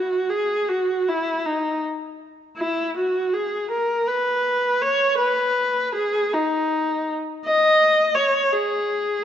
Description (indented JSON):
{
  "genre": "classical, free, expressive piece for unaccompanied viola",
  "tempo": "53 BPM (dotted quarters)",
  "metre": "6/8",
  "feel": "uneven beats, rubato",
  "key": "unclear",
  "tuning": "A4 = 440 Hz",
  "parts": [
    { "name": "warm viola", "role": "solo", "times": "0.0-9.2 s", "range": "D#4 to D#5", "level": "-19 LUFS", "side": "equal", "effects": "none" }
  ],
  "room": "moderate scoring stage reverb, RT60 1.7 s",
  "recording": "dark, warm production, nothing above 7.9 kHz",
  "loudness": "-19 LUFS",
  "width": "side -10 dB against mid",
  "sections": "0.0-9.2 A section",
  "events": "none",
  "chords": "none",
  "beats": "| 0.71 1.85 | 2.97 4.08 | 5.19 6.34 | 7.45 8.53"
}